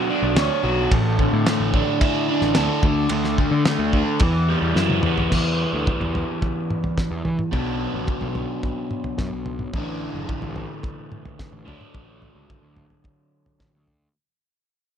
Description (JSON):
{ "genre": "psychedelic rock", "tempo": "109 BPM", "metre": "4/4", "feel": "straight", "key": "E minor", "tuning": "A4 = 440 Hz", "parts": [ { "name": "overdriven semi-hollow guitar", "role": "riff", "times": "0.0-13.9 s", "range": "A2 to C#5", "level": "-23 LUFS", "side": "equal", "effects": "phaser" }, { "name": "fuzz picked electric bass", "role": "bass", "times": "0.2-14.1 s", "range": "F#1 to E3", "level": "-25 LUFS", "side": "equal", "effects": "overdrive" }, { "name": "cloth-damped thuddy drum kit", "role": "drums", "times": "0.4-14.0 s", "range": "crash cymbal, kick drum, ride cymbal, snare drum, toms", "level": "-24 LUFS", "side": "equal", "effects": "none" } ], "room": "light reverb", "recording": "none", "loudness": "-19 LUFS", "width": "side -8 dB against mid", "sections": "0.0-5.3 A section; 5.3-14.1 B section", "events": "drum fill 4.8-5.3; fade-out 5.3-14.1", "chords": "0.0 Bmadd9; 0.9 Asus4; 2.8 D5; 4.2 Em; 7.5 Bm; 9.7 Asus4; 11.7 D" }